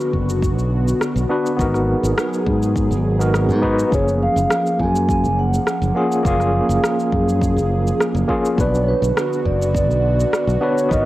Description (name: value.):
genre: sunset chillout.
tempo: 103 BPM.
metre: 4/4.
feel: straight.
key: unclear.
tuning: A4 = 440 Hz.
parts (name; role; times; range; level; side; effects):
overdriven tine electric piano; accompaniment; 0.0-11.1 s; E#3 to B4; -21 LUFS; equal; fast tremolo, auto-pan, low-pass filter, cassette tape, tape echo.
airy breathy pad; sustained chords; 0.0-11.1 s; B2 to G#4; -25 LUFS; equal; chorus, cassette tape.
electronic shaker and rim click; drums; 0.0-11.0 s; none; -25 LUFS; equal; cassette tape.
modern bright fingered electric bass; bass; 0.1-11.1 s; F#1 to G#2; -19 LUFS; equal; none.
electronic kick drum; drums; 0.1-11.0 s; none; -23 LUFS; equal; cassette tape.
vibraphone with soft mallets; melody; 3.9-11.0 s; B4 to G#5; -22 LUFS; right 1 dB; analog delay.
room: light reverb.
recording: home recording on cassette.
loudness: -16 LUFS.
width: side -16 dB against mid.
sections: 0.0-11.1 A section.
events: filter sweep on tine electric piano 0.0-11.1.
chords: 0.0 Bm; 1.6 G#m7; 3.9 F#maj7; 8.6 Bm.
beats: 0.43 1.01 | 1.59 2.17 2.76 3.34 | 3.92 4.50 5.09 5.67 | 6.25 6.83 7.42 8.00 | 8.58 9.16 9.75 10.33 | 10.91.